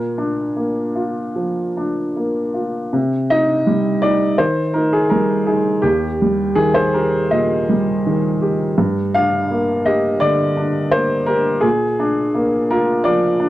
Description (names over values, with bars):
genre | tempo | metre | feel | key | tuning
neoclassical minimalist piano | 83 BPM | 4/4 | rubato | C minor | A4 = 444 Hz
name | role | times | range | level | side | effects
warm upright piano | solo | 0.0-13.5 s | Eb2 to F5 | -15 LUFS | equal | none
room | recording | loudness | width
light reverb | dry, close 1970s-style studio recording | -15 LUFS | side -15 dB against mid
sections
0.0-2.9 A section; 2.9-13.5 A section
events
none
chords
0.0 Bb; 2.9 Cm; 5.8 Eb; 8.8 Gm; 11.6 Bb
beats
0.56 1.36 2.15 | 2.93 3.67 4.40 5.12 | 5.84 6.57 7.33 8.06 | 8.79 9.51 10.22 10.94 | 11.64 12.36 13.07